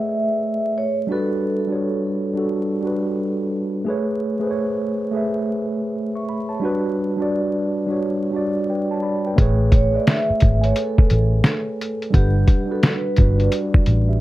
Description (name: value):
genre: lo-fi hip hop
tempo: 87 BPM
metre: 4/4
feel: swing 65% on 16ths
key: A major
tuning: A4 = 440 Hz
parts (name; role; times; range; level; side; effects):
- vibraphone with soft mallets; melody; 0.0-3.5, 9.7-13.5 s; G4 to E5; -25 LUFS; right 1 dB; low-pass filter, tape echo
- mellow tine electric piano; accompaniment; 0.0-14.2 s; G3 to C#6; -22 LUFS; right 1 dB; medium stereo tremolo, cassette tape, low-pass filter
- vintage muted fingered electric bass; bass; 9.4-14.2 s; G1 to A1; -18 LUFS; equal; none
- lo-fi sampler-style drum kit; drums; 9.4-14.1 s; hi-hat, kick drum, snare drum; -16 LUFS; equal; none
room: moderate small room reverb, RT60 0.5 s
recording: dark, warm production, vinyl crackle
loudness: -18 LUFS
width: side -16 dB against mid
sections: 0.0-9.4 A section; 9.4-14.2 B section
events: none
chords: 0.0 Amaj9; 1.1 Gmaj7; 3.9 Amaj9; 6.6 Gmaj7; 9.4 Amaj9; 12.1 Gmaj7